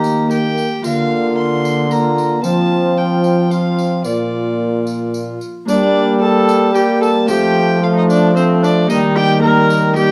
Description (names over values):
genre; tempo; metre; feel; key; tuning
classical, renaissance-style consort dance; 112 BPM; 3/4; straight; Bb major; A4 = 439 Hz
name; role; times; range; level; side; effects
warm violin; melody; 0.0-10.1 s; C5 to C6; -23 LUFS; equal; none
warm viola; second line; 0.0-10.1 s; C4 to Bb4; -22 LUFS; equal; none
Celtic harp; accompaniment; 0.0-10.1 s; Bb2 to D5; -24 LUFS; equal; none
mellow trombone; accompaniment; 0.0-10.1 s; G3 to C4; -21 LUFS; equal; none
clear trombone; bass; 0.0-10.1 s; Bb2 to G3; -19 LUFS; equal; none
tambourine; percussion; 0.0-10.1 s; none; -38 LUFS; equal; none
room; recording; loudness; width
moderate stone room reverb, RT60 1.1 s; dark, warm production; -15 LUFS; mono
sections
0.0-5.7 A section; 5.7-10.1 A section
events
none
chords
0.0 Eb; 0.8 Bb/D; 2.4 F; 4.1 Bb; 5.7 Gm; 7.3 F; 8.9 Eb